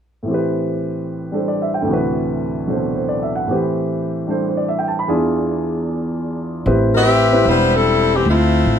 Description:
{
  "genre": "jazz",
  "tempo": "150 BPM",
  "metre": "4/4",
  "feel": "swing 65% on 8ths",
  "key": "A dorian",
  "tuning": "A4 = 440 Hz",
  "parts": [
    { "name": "warm upright piano", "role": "accompaniment", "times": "0.2-7.5 s", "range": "D2 to B5", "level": "-18 LUFS", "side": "right 1 dB", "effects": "none" },
    { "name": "upright bass", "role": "bass", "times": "6.7-8.8 s", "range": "E1 to D2", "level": "-17 LUFS", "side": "equal", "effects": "none" },
    { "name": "warm saxophone section", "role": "melody", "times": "6.9-8.8 s", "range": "E3 to E5", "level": "-14 LUFS", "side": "left 2 dB", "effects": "none" }
  ],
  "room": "moderate large studio reverb, RT60 0.8 s",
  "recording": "faint mains hum",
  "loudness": "-16 LUFS",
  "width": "side -8 dB against mid",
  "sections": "0.3-6.7 A section; 6.7-8.8 B section",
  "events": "none",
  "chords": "0.3 Am9; 1.9 D13; 3.5 Am9; 5.1 E7b9; 6.7 Am9; 8.3 Dm9"
}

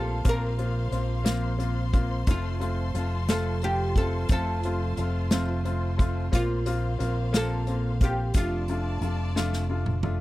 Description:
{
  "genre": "six-eight pop ballad",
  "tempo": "59 BPM (dotted quarters)",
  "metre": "6/8",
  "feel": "straight",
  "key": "F major",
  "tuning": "A4 = 440 Hz",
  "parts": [
    { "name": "oud", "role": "melody", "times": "0.0-10.0 s", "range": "F4 to Bb4", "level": "-32 LUFS", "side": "right 1 dB", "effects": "none" },
    { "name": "warm upright piano", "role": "accompaniment", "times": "0.0-10.2 s", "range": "A3 to F4", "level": "-33 LUFS", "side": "left 5 dB", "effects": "none" },
    { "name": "rich studio string section", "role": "sustained chords", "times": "0.0-10.2 s", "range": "F4 to C6", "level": "-38 LUFS", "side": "left 1 dB", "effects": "none" },
    { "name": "picked steel-string acoustic guitar", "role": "arpeggios", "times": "0.0-10.2 s", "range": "F2 to F4", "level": "-37 LUFS", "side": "right 9 dB", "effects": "none" },
    { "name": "fingered electric bass", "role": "bass", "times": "0.0-10.2 s", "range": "F1 to Bb1", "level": "-28 LUFS", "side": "equal", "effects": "none" },
    { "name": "unplugged drum kit", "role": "drums", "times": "0.2-10.2 s", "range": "hi-hat, kick drum, snare drum, toms", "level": "-25 LUFS", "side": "equal", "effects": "none" }
  ],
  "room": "little or no reverb",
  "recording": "dry, close 1970s-style studio recording",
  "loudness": "-24 LUFS",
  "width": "side -17 dB against mid",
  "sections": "0.0-10.2 A section",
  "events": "drum fill 9.4-10.2",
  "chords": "0.0 Bbsus2; 2.3 F; 6.3 Bbsus2; 8.3 F6"
}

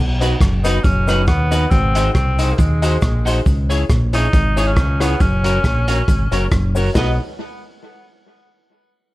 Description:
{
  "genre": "ska",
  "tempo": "137 BPM",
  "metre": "4/4",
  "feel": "swing 55% on 8ths",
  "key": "B major",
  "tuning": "A4 = 440 Hz",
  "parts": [
    { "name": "fingered electric bass", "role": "bass", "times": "0.0-7.2 s", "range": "F#1 to D#2", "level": "-17 LUFS", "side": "equal", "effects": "none" },
    { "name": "electric guitar at the edge of break-up", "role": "accompaniment", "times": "0.2-7.1 s", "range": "D#4 to D#5", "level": "-26 LUFS", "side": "right 2 dB", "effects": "wide subtle chorus" },
    { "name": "bright upright piano", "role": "stabs", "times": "0.2-7.1 s", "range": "B3 to D#5", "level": "-25 LUFS", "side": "left 4 dB", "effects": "none" },
    { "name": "crunchy breakbeat drum kit", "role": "drums", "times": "0.2-7.1 s", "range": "crash cymbal, hi-hat, kick drum, rim click, snare drum", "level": "-18 LUFS", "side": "equal", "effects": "none" },
    { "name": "cabasa", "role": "percussion", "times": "0.2-7.2 s", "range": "none", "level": "-39 LUFS", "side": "left 6 dB", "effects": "none" },
    { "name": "bright tenor saxophone", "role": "melody", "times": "0.6-7.2 s", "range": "G#3 to D#4", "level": "-23 LUFS", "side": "equal", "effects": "tape echo" }
  ],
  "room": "small room ambience",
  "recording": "dark, warm production",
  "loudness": "-14 LUFS",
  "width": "side -18 dB against mid",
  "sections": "0.0-7.0 A section; 7.0-8.7 B section",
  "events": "none",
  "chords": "0.0 B; 1.7 G#7; 3.5 C#m; 5.2 F#; 7.0 B"
}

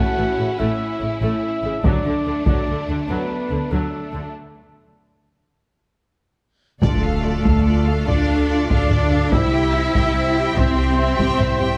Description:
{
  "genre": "cinematic, epic orchestral film score",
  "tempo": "96 BPM (dotted quarters)",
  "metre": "12/8",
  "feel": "straight",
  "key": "D minor from 6.8 s",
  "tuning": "A4 = 440 Hz",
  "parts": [
    { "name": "warm symphonic violin section", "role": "melody", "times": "0.0-11.8 s", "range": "D4 to G5", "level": "-33 LUFS", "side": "equal", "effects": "none" },
    { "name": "rich symphonic violin section", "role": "second line", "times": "0.0-11.8 s", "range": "A3 to E5", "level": "-36 LUFS", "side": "equal", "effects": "none" },
    { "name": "rich symphonic viola section", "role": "accompaniment", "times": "0.0-11.8 s", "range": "C#3 to A4", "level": "-31 LUFS", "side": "equal", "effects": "none" },
    { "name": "warm French horn section", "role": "sustained chords", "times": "0.0-11.7 s", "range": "A3 to F5", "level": "-31 LUFS", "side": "equal", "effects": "none" },
    { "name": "mellow trumpet", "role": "stabs", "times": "0.0-11.8 s", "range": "A4 to F#5", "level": "-30 LUFS", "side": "equal", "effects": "none" },
    { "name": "rich symphonic cello section", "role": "bass", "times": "0.0-11.8 s", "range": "A2 to E4", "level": "-26 LUFS", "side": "equal", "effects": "none" },
    { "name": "rich symphonic double bass section", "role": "bass", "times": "0.0-11.7 s", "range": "A1 to D2", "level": "-26 LUFS", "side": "equal", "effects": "none" },
    { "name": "taiko ensemble", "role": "drums", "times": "1.8-2.9, 6.8-11.8 s", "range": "none", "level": "-24 LUFS", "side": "equal", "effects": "none" },
    { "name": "mellow hollow silver concert flute", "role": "second line", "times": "6.8-11.8 s", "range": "A5 to E6", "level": "-32 LUFS", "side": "equal", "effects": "none" },
    { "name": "clear symphonic string section", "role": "sustained chords", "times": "6.8-11.8 s", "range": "A3 to G5", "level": "-32 LUFS", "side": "equal", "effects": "none" },
    { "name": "impact", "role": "sound effects", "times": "6.8-9.3 s", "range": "none", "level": "-31 LUFS", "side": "equal", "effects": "none" }
  ],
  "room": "moderate scoring stage reverb, RT60 1.7 s",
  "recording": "none",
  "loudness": "-19 LUFS",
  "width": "mono",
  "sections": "0.0-6.8 A section; 6.8-11.8 B section",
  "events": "break 4.3-6.8; drum fill 6.2-6.8; impact 6.8-9.3",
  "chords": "0.0 A; 1.8 D; 4.3 N.C.; 6.8 Dm; 9.3 C"
}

